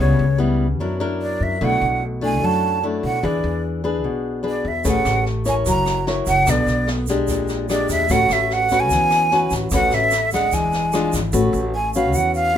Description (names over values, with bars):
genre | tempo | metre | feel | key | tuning
bossa nova | 148 BPM | 4/4 | straight | A major | A4 = 440 Hz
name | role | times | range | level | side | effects
breathy jazz flute | melody | 0.0-12.6 s | C#5 to A#5 | -19 LUFS | right 2 dB | none
nylon-string guitar | accompaniment | 0.0-12.6 s | Bb2 to C#5 | -22 LUFS | left 3 dB | none
upright bass | bass | 0.0-12.6 s | E1 to F#2 | -24 LUFS | equal | none
jazz brush drum kit | drums | 4.8-11.2 s | kick drum, rim click, snare drum | -28 LUFS | equal | none
egg shaker | percussion | 4.8-12.5 s | none | -32 LUFS | right 8 dB | none
room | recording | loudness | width
light reverb | minimal, uncompressed stereo recording | -17 LUFS | side -9 dB against mid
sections
0.0-11.3 A section; 11.3-12.6 B section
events
flute solo 11.3-12.6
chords
0.0 C#m7b5; 0.8 F#aug7; 1.6 Bm7; 3.2 E7; 4.9 Amaj9; 5.7 F#7; 6.5 Bm7; 7.3 Bb6; 8.1 A69; 10.5 E7b9; 11.3 A69